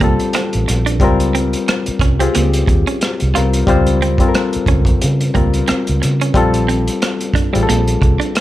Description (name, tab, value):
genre	R&B, neo-soul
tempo	90 BPM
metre	4/4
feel	swing 56% on 16ths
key	unclear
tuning	A4 = 440 Hz
part	clean electric guitar	second line	0.0-8.3 s	Bb3 to F4	-22 LUFS	right 7 dB	plate reverb
part	barky reed electric piano	accompaniment	0.0-8.4 s	G3 to C5	-17 LUFS	left 4 dB	overdrive, plate reverb
part	vintage muted fingered electric bass	bass	0.0-8.2 s	A1 to Db3	-16 LUFS	right 1 dB	none
part	crunchy breakbeat drum kit	drums	0.0-8.4 s	hi-hat, kick drum, rim click	-18 LUFS	right 1 dB	none
room	light reverb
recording	none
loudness	-13 LUFS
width	side -14 dB against mid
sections	0.0-8.4 A section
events	none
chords	0.0 Bbmaj7sus2; 1.0 Dbmaj7; 6.3 Bbmaj7sus2